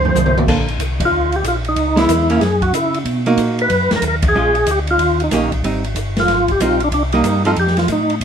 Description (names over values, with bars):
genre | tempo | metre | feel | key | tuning
soul jazz organ trio | 186 BPM | 4/4 | swing 64% on 8ths | unclear | A4 = 440 Hz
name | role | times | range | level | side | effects
percussive tonewheel organ | melody | 0.0-8.2 s | D4 to C5 | -16 LUFS | equal | slow rotary speaker, overdrive, chorus vibrato
mellow tonewheel organ | bass | 0.0-8.2 s | G1 to Db3 | -20 LUFS | equal | chorus vibrato, slow rotary speaker
open jazz drum kit | drums | 0.0-8.2 s | crash cymbal, hi-hat, kick drum, ride cymbal, snare drum, toms | -21 LUFS | right 1 dB | none
archtop guitar, miked and amplified | accompaniment | 0.5-7.6 s | Eb3 to C5 | -18 LUFS | right 3 dB | none
room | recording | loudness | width
light reverb | minimal, uncompressed stereo recording | -14 LUFS | side -8 dB against mid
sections
0.5-8.2 A section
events
drum fill 0.0-0.5; band accent 1.0, 4.2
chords
0.5 Bbmaj9; 1.8 Dbm7; 2.4 Gb5; 3.1 Bmaj7; 4.3 Bbm7; 5.0 Eb7; 5.6 Abmaj7; 6.9 Cm7; 7.6 F